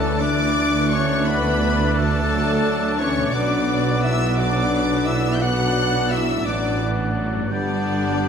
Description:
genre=classical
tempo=57 BPM (dotted quarters)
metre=12/8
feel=rubato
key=unclear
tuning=A4 = 440 Hz
part: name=rich studio violin section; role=melody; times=0.0-8.3 s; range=D5 to G6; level=-27 LUFS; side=left 3 dB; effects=none
part: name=concert flute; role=second line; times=0.0-8.3 s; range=F#6 to G6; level=-30 LUFS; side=left 2 dB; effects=none
part: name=rich studio violin section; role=second line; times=0.0-8.3 s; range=D4 to F#5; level=-31 LUFS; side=left 4 dB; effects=none
part: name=warm clarinet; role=second line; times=0.0-8.3 s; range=D4 to F#5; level=-30 LUFS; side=left 3 dB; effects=none
part: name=warm oboe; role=second line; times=0.0-8.3 s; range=D5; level=-32 LUFS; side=equal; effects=none
part: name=clear bassoon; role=accompaniment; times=0.0-8.3 s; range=A3 to B3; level=-30 LUFS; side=equal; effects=none
part: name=rich studio viola section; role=accompaniment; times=0.0-8.3 s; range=E3 to D4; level=-28 LUFS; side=right 1 dB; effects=none
part: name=mellow French horn section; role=sustained chords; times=0.0-8.3 s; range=D3 to F#4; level=-26 LUFS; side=left 4 dB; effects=none
part: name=concert harp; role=arpeggios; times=0.0-8.3 s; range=G2 to G4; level=-33 LUFS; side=left 10 dB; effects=none
part: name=mellow tuba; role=bass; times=0.0-8.3 s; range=G1 to D2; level=-27 LUFS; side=right 4 dB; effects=none
part: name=rich studio cello section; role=bass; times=0.0-8.3 s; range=D2 to B2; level=-27 LUFS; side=right 3 dB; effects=none
part: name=warm studio double bass section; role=bass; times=0.0-8.3 s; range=G1 to D2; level=-27 LUFS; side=right 4 dB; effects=none
room=wet scoring stage reverb, RT60 1.7 s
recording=none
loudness=-18 LUFS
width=side -7 dB against mid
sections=0.0-8.3 A section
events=none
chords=0.0 D; 3.3 Bm; 7.5 G

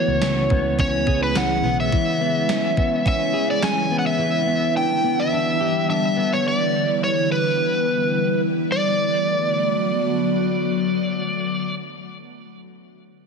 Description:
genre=dream pop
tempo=106 BPM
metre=4/4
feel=straight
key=B minor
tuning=A4 = 437 Hz
part: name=overdriven slide guitar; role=melody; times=0.0-11.7 s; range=B4 to G#5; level=-22 LUFS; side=equal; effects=ping-pong delay
part: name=ethereal airy pad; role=sustained chords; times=0.0-11.7 s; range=C#3 to F#4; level=-23 LUFS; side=equal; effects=ensemble chorus, built-in reverb, phaser
part: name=electric guitar at the edge of break-up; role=arpeggios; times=0.0-7.0 s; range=E3 to G#4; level=-25 LUFS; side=left 2 dB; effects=analog chorus, ping-pong delay
part: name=vintage muted picked electric bass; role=bass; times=0.1-1.9 s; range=B1 to C#2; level=-26 LUFS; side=right 1 dB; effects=none
part: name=gated 80s digital drum machine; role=drums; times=0.2-3.8 s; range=kick drum, ride cymbal, snare drum, tambourine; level=-23 LUFS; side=right 1 dB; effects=gated reverb, gated reverb snare
room=moderate scoring stage reverb, RT60 1.7 s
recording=heavily compressed radio sound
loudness=-18 LUFS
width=side -5 dB against mid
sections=0.0-8.7 A section; 8.7-11.0 B section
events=none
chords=0.0 C#m7; 4.2 G6; 8.7 Bm7

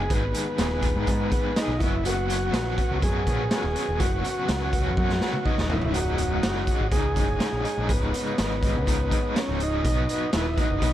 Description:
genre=psychedelic rock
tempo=123 BPM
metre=4/4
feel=straight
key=unclear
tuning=A4 = 438 Hz
part: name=combo organ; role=melody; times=0.0-10.9 s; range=B3 to G#4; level=-28 LUFS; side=equal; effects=slapback echo
part: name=percussive tonewheel organ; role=sustained chords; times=0.0-10.9 s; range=G#4 to D#6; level=-38 LUFS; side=right 2 dB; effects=slow rotary speaker, chorus vibrato
part: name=overdriven electric guitar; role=riff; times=0.0-10.9 s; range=C#2 to B4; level=-30 LUFS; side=left 1 dB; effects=tremolo
part: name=growling picked electric bass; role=bass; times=0.0-10.9 s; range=C#1 to G#2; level=-28 LUFS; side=equal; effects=overdrive
part: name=raw garage drum kit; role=drums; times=0.1-10.9 s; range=hi-hat, kick drum, snare drum, toms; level=-26 LUFS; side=equal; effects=none
room=small room reverb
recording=none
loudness=-22 LUFS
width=side -12 dB against mid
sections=0.0-10.9 A section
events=drum fill 5.0-5.9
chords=0.0 G#m7; 1.8 F#sus4; 5.7 C#sus2; 9.8 B

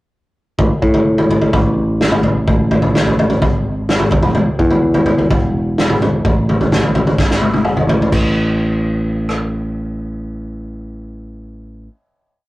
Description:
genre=math rock and midwest emo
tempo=128 BPM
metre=4/4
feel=straight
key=unclear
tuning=A4 = 440 Hz
part: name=picked electric bass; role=bass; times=0.6-11.9 s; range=E1 to A2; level=-17 LUFS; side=equal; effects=none
part: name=loose indie drum kit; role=drums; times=0.6-9.4 s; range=crash cymbal, kick drum, rim click, snare drum, toms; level=-15 LUFS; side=equal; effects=none
room=light reverb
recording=rough rehearsal-room recording, warm saturation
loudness=-12 LUFS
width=side -18 dB against mid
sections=0.6-8.1 A section; 8.1-11.9 final note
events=drum fill 7.2-8.1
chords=none

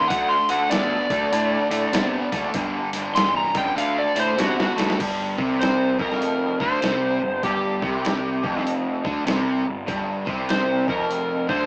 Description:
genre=blues rock power trio and southern rock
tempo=98 BPM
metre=4/4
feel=swing 64% on 8ths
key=G minor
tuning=A4 = 438 Hz
part: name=overdriven slide guitar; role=melody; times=0.0-11.7 s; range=F#4 to C6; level=-26 LUFS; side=equal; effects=none
part: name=overdriven electric guitar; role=riff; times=0.0-11.7 s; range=F2 to B3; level=-27 LUFS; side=equal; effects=none
part: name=fuzz picked electric bass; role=bass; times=0.0-11.7 s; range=F1 to C3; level=-31 LUFS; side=equal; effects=overdrive
part: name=lo-fi sampler-style drum kit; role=drums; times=0.1-11.6 s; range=crash cymbal, hi-hat, kick drum, snare drum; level=-29 LUFS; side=equal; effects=overdrive
room=moderate large studio reverb, RT60 0.8 s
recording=band playing live in one room, small speaker sound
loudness=-23 LUFS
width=mono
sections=0.0-5.0 A section; 5.0-11.7 B section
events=electric slide guitar solo 0.0-5.0; drum fill 4.4-5.0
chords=0.1 D5; 2.5 G5; 3.8 D7; 5.0 G5

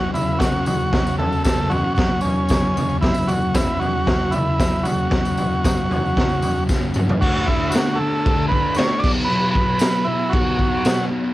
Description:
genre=garage rock duo or trio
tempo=115 BPM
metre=4/4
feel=straight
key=F# minor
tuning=A4 = 441 Hz
part: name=overdriven combo organ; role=melody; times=0.0-11.1 s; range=C#4 to D5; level=-22 LUFS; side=right 1 dB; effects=cassette tape
part: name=fuzz guitar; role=riff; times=0.0-11.3 s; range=F#2 to D4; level=-23 LUFS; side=left 1 dB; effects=distortion, cassette tape
part: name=raw garage drum kit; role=drums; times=0.1-11.0 s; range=crash cymbal, kick drum, snare drum, toms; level=-20 LUFS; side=equal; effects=vintage 12-bit sampler grit, cassette tape
part: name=tambourine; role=percussion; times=0.2-11.0 s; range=none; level=-38 LUFS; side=left 3 dB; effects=none
room=light reverb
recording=home recording on cassette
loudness=-17 LUFS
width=side -16 dB against mid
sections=0.0-7.2 A section; 7.2-11.3 B section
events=drum fill 6.7-7.2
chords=0.0 F#5; 7.2 D5; 9.0 B5

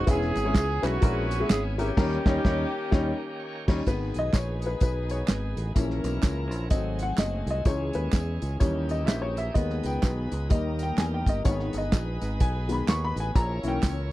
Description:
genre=uptempo gospel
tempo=126 BPM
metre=4/4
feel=swing 60% on 8ths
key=G# harmonic minor from 3.9 s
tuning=A4 = 440 Hz
part: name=warm horn section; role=melody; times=0.0-3.6 s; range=A#3 to G#4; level=-30 LUFS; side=equal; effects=none
part: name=bright tonewheel organ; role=sustained chords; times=0.0-14.1 s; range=D#3 to G#5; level=-40 LUFS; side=right 2 dB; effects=fast rotary speaker, overdrive
part: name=fingered electric bass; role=bass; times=0.0-14.1 s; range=E1 to E2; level=-29 LUFS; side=equal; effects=none
part: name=warm upright piano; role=accompaniment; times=0.1-13.9 s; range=D#3 to C#6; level=-30 LUFS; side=left 2 dB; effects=none
part: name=warm soul drum kit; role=drums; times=0.1-14.0 s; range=crash cymbal, hi-hat, kick drum, snare drum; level=-24 LUFS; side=equal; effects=none
part: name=tambourine and handclaps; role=percussion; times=0.1-14.0 s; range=none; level=-40 LUFS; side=right 4 dB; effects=none
part: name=warm chamber string section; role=sustained chords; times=3.9-14.1 s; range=G#3 to C#5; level=-39 LUFS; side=equal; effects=none
room=little or no reverb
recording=dry, close 1970s-style studio recording, tape saturation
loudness=-24 LUFS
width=side -16 dB against mid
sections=0.0-3.9 A section; 3.9-14.1 B section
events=band accent 2.0-3.9; upright piano solo 3.9-14.1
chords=0.1 C#m7/E; 2.0 D#7; 3.9 G#m; 5.8 A#dim; 6.7 G#7b9; 7.7 C#m; 8.6 D#7b9; 9.6 G#m; 10.5 D#; 11.5 G#m; 13.4 A#dim

